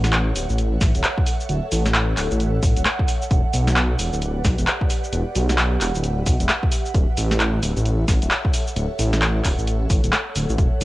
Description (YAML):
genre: UK garage, two-step garage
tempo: 132 BPM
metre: 4/4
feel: swing 61% on 16ths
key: unclear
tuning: A4 = 440 Hz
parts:
  - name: ethereal airy pad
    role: sustained chords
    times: 0.0-10.8 s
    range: G4 to F#5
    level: -29 LUFS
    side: right 2 dB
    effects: ensemble chorus, built-in reverb, phaser, sidechain pumping, cassette tape
  - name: dark detuned saw bass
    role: bass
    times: 0.0-10.8 s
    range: D1 to B1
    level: -21 LUFS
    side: equal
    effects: none
  - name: punchy analog drum machine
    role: drums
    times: 0.0-10.8 s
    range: cabasa, handclaps, hi-hat, snare drum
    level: -23 LUFS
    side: equal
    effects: cassette tape
  - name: electronic kick drum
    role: drums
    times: 0.8-10.7 s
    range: none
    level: -20 LUFS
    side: equal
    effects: cassette tape
room: light reverb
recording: home recording on cassette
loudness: -18 LUFS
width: side -18 dB against mid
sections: 0.0-10.8 A section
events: kick drops out 10.1-10.6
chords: 0.0 Dmaj9; 3.3 Em9; 6.9 Dmaj9